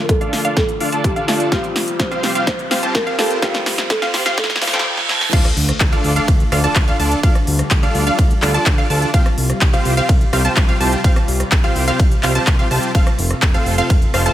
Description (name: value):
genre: EDM, festival progressive house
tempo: 126 BPM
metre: 4/4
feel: straight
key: D minor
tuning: A4 = 435 Hz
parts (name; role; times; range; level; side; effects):
- marimba with soft mallets; melody; 0.0-4.9 s; F4 to C5; -24 LUFS; right 1 dB; digital delay
- clear baby grand piano; accompaniment; 0.0-5.4 s; F3 to A4; -27 LUFS; left 2 dB; sidechain pumping, digital delay
- lush unison pad; sustained chords; 0.0-14.3 s; C3 to F4; -27 LUFS; left 1 dB; chorus, sidechain pumping
- riser, reverse cymbal and sub drop; sound effects; 1.1-7.2 s; none; -26 LUFS; right 2 dB; none
- big-room dance drum kit; drums; 0.1-14.3 s; crash cymbal, handclaps, hi-hat, ride cymbal, rim click, snare drum; -21 LUFS; equal; none
- electronic kick drum; drums; 0.1-14.0 s; none; -15 LUFS; equal; none
- wide unison pluck; arpeggios; 0.2-14.3 s; F5 to A5; -24 LUFS; right 1 dB; sidechain pumping, digital delay
- dense compressed supersaw; riff; 0.2-14.3 s; C4 to A5; -22 LUFS; right 1 dB; sidechain pumping, low-pass filter, digital delay
- fat analog bass; bass; 5.3-14.3 s; F1 to D2; -20 LUFS; equal; sidechain pumping
room: light reverb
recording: high-pass filter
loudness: -14 LUFS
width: side -12 dB against mid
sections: 0.0-5.3 A section; 5.3-14.3 B section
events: build-up 0.0-5.3; drum fill 0.0-4.9, 5.0-5.3; filter sweep on supersaw synth 0.0-5.3; filter sweep on synth pluck 0.0-5.3; filter sweep 0.0-5.3; riser 1.1-4.9; reverse cymbal 4.4-5.3; drop 5.3-14.3; impact 5.3-7.2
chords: 0.0 Dm; 1.5 Csus4; 5.3 Dm; 9.1 Csus4; 12.9 F